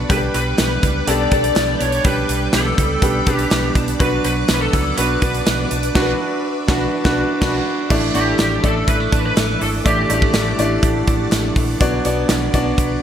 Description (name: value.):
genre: 1980s-style pop.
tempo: 123 BPM.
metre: 4/4.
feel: straight.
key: unclear.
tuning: A4 = 440 Hz.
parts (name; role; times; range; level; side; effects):
bright concert grand piano; accompaniment; 0.0-13.0 s; A3 to D5; -21 LUFS; equal; none.
string machine, violins; sustained chords; 0.0-13.0 s; A4 to D6; -29 LUFS; left 1 dB; ensemble chorus.
direct-recorded clean electric guitar; riff; 0.0-13.0 s; E3 to D4; -26 LUFS; right 5 dB; analog chorus, ping-pong delay.
fingered electric bass; bass; 0.0-13.0 s; G#1 to C#2; -23 LUFS; equal; none.
lead guitar through a small cranked amp; melody; 0.1-11.5 s; G4 to D5; -22 LUFS; left 1 dB; overdrive, analog chorus.
modern studio drum kit; drums; 0.1-12.9 s; crash cymbal, hi-hat, kick drum, snare drum, tambourine; -20 LUFS; equal; gated reverb.
group handclap; percussion; 0.6-12.4 s; none; -37 LUFS; left 2 dB; none.
analog synth brass; stabs; 6.0-7.6 s; D4 to B4; -28 LUFS; right 1 dB; none.
room: moderate plate reverb, RT60 2.2 s.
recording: bright 1980s-style digital production.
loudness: -15 LUFS.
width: side -9 dB against mid.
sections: 0.0-7.9 A section; 7.9-13.0 B section.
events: band accent 6.0-7.9.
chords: 0.1 G/B; 4.0 Bm; 7.9 Asus4; 11.8 Bm.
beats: | 0.10 0.59 1.08 1.56 | 2.05 2.54 3.03 3.52 | 4.00 4.49 4.98 5.47 | 5.95 6.44 6.93 7.42 | 7.91 8.39 8.88 9.37 | 9.86 10.34 10.83 11.32 | 11.81 12.29 12.78.